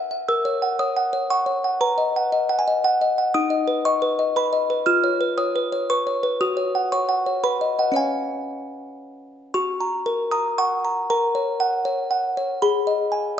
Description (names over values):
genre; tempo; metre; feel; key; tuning
classical, lullaby for music box; 117 BPM; 3/4; straight; B major, F# major from 3.3 s; A4 = 439 Hz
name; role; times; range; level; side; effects
music box; solo; 0.0-13.4 s; C#4 to E#6; -20 LUFS; equal; none
room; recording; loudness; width
wet recital hall reverb, RT60 1.7 s; dark, warm production, nothing above 8.0 kHz; -19 LUFS; side -9 dB against mid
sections
0.0-9.5 A section; 9.5-13.4 B section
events
none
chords
0.3 F#7/A#; 1.8 B; 3.3 B/D#; 4.9 C#7/E#; 6.4 F#5; 7.4 B; 8.0 C#; 9.5 F#; 11.1 F#/A#; 12.6 G#m